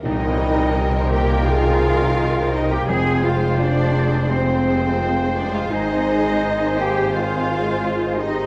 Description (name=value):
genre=cinematic, emotional film score for orchestra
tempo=85 BPM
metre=4/4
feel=rubato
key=C minor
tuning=A4 = 440 Hz
part: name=muted symphonic violin section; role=melody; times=0.0-8.5 s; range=Bb4 to C5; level=-35 LUFS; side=equal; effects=none
part: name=clear clarinet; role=second line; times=0.0-8.2 s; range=Bb4 to C5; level=-32 LUFS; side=equal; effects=none
part: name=muted symphonic violin section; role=second line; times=0.0-8.5 s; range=C5 to Ab5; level=-34 LUFS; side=equal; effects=none
part: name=silver concert flute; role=second line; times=0.0-8.2 s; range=G5 to Ab5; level=-32 LUFS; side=equal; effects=none
part: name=clear concert grand piano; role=accompaniment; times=0.0-8.5 s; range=C2 to F5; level=-31 LUFS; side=equal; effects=none
part: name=muted symphonic viola section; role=accompaniment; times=0.0-8.5 s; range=Eb3 to C5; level=-32 LUFS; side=equal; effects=none
part: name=dark French horn section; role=sustained chords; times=0.0-8.5 s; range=F3 to Ab4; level=-29 LUFS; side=equal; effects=none
part: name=muted symphonic cello section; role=bass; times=0.0-8.5 s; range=C4 to Ab4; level=-25 LUFS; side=equal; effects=none
part: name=muted symphonic double bass section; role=bass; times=0.0-8.5 s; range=F1 to C2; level=-25 LUFS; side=equal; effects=none
part: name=tam-tam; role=percussion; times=0.0-2.8 s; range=none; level=-34 LUFS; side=equal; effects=none
room=moderate concert hall reverb, RT60 1.9 s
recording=vinyl crackle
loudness=-19 LUFS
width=mono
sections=0.0-8.5 A section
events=band accent 0.0-0.8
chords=0.0 Cm7; 2.9 Fmadd9; 5.7 Ab